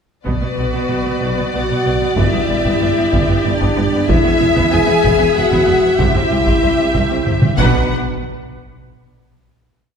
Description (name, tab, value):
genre	cinematic, epic orchestral film score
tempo	94 BPM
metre	3/4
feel	straight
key	B phrygian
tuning	A4 = 445 Hz
part	clear studio viola section	accompaniment	0.2-7.9 s	B3 to B4	-22 LUFS	right 1 dB	none
part	rich symphonic violin section	melody	0.3-7.9 s	D5 to F#5	-22 LUFS	left 3 dB	none
part	rich symphonic violin section	second line	0.3-7.9 s	B4 to G#5	-23 LUFS	left 1 dB	none
part	dark French horn section	sustained chords	0.3-7.9 s	B3 to G#4	-18 LUFS	left 1 dB	none
part	clear symphonic double bass section	bass	0.3-7.9 s	E1 to C2	-23 LUFS	right 2 dB	none
part	warm symphonic cello section	bass	0.3-7.9 s	C2 to B2	-22 LUFS	right 1 dB	none
part	taiko ensemble	drums	0.3-8.8 s	none	-19 LUFS	equal	none
room	wet scoring stage reverb, RT60 1.8 s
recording	heard from further back in the room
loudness	-13 LUFS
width	side -6 dB against mid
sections	0.3-7.9 theme; 7.9-9.8 final hit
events	drum fill 7.4-7.9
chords	0.3 Bm; 2.2 G; 4.1 E; 6.0 C; 7.6 Bm; 7.9 N.C.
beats	| 0.26 0.90 1.54 | 2.18 2.81 3.45 | 4.09 4.72 5.36 | 5.99 6.63 7.26 | 7.90 8.53